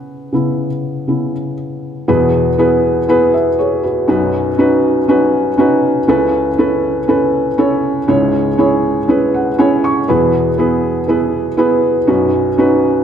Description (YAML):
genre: pop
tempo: 120 BPM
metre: 4/4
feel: straight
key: E major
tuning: A4 = 442 Hz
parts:
  - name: felt-muted upright piano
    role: solo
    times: 0.0-13.0 s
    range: B1 to C#6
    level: -12 LUFS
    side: equal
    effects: none
room: moderate recital hall reverb, RT60 1.3 s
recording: dark, warm production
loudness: -12 LUFS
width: side -8 dB against mid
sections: 0.0-2.1 A section; 2.1-13.0 B section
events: felt piano solo 0.0-2.1; felt piano fill 9.1-10.1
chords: 0.0 C#m7; 2.1 E; 4.1 Badd9; 6.1 Aadd9/C#; 8.1 C#m; 10.1 E; 12.1 Badd9